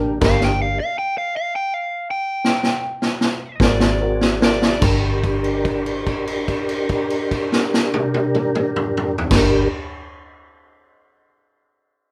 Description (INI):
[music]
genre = slow blues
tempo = 48-56 BPM (dotted quarters)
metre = 12/8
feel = straight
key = G minor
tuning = A4 = 440 Hz
[part]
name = overdriven semi-hollow guitar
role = melody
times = 0.0-4.8 s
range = G4 to G5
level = -26 LUFS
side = equal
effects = plate reverb
[part]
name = dark upright piano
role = accompaniment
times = 0.0-9.7 s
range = C4 to Bb4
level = -26 LUFS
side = equal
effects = plate reverb
[part]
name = tonewheel organ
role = sustained chords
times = 0.0-9.7 s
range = Bb3 to Bb4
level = -25 LUFS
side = equal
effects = chorus vibrato, slow rotary speaker, plate reverb
[part]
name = vintage muted fingered electric bass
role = bass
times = 0.0-9.7 s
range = G1 to A1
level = -25 LUFS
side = equal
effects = none
[part]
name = raw garage drum kit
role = drums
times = 0.2-9.5 s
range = crash cymbal, kick drum, snare drum, toms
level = -22 LUFS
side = equal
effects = none
[sound]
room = wet small room reverb, RT60 0.6 s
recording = rough home demo mix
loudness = -20 LUFS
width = mono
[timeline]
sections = 0.0-4.8 A section; 4.8-9.8 B section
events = slowing down 0.0-4.8; overdriven electric guitar solo 0.0-4.8; drum fill 0.2-4.8; held note 4.8-9.3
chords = 0.0 Gm; 3.6 Ab7; 4.8 Gm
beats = | 0.22 1.31 2.44 3.60 | 4.82 6.07 7.32 8.56